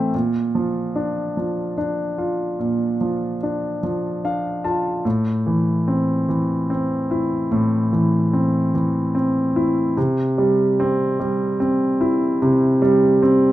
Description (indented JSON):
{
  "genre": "pop",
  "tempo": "49 BPM (dotted quarters)",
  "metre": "6/8",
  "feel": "straight",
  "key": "unclear",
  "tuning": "A4 = 443 Hz",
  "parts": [
    { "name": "warm concert grand piano", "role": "solo", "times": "0.0-13.5 s", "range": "A2 to A5", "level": "-18 LUFS", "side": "equal", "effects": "none" }
  ],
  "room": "wet studio reverb, RT60 0.6 s",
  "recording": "rough home demo mix",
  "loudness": "-18 LUFS",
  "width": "side -14 dB against mid",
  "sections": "0.0-13.5 A section",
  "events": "grand piano fill 3.8-5.1",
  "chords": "0.1 Bb; 5.1 Am; 10.0 C",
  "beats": "| 0.14 1.37 | 2.59 3.82 | 5.05 6.28 | 7.51 8.74 | 9.96 11.19 | 12.42"
}